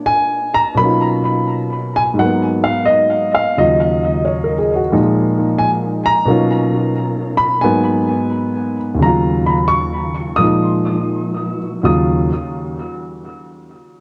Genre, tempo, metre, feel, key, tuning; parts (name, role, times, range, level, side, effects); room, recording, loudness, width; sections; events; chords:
solo jazz; 87 BPM; 4/4; swing 68% on 8ths, rubato; Eb minor; A4 = 441 Hz
warm concert grand piano; solo; 0.0-12.3 s; Eb2 to Eb6; -16 LUFS; equal; analog delay
moderate spring reverb, RT60 1.1 s, studio reverb; echo-heavy mix, cassette tape; -16 LUFS; mono
0.8-11.9 A section; 11.9-14.0 B section
0.0 Bb7; 0.8 Bmaj9#11; 2.2 Abm9; 3.6 Ebm9; 4.9 Bb7sus4; 6.3 Bmaj9#11; 7.6 Abm9; 9.0 Ebm9; 10.4 Bb7sus4; 11.9 Ebm9